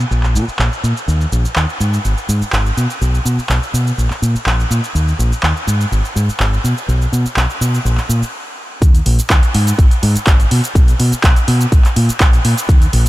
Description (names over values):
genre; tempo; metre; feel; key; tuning
filtered disco house; 124 BPM; 4/4; straight; unclear; A4 = 439 Hz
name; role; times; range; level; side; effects
deep dub fingered electric bass; bass; 0.0-13.1 s; Ab1 to Cb3; -14 LUFS; equal; sidechain pumping, low-pass filter
punchy analog drum machine; drums; 0.0-13.1 s; handclaps, hi-hat, shaker; -20 LUFS; equal; sidechain pumping on perc, sidechain pumping on hats
electronic kick drum; drums; 8.8-12.8 s; none; -10 LUFS; equal; none
room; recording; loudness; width
light reverb, digital ambience; none; -12 LUFS; side -17 dB against mid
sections
0.0-8.8 A section; 8.8-13.1 B section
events
filter sweep on fingered electric bass 0.0-8.8; stop 8.3-8.8; drop 8.8-13.1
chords
none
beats
0.11 0.59 | 1.08 1.56 2.04 2.53 | 3.01 3.50 3.98 4.46 | 4.95 5.43 5.92 6.40 | 6.88 7.37 7.85 8.34 | 8.82 9.30 9.79 10.27 | 10.75 11.24 11.72 12.21 | 12.69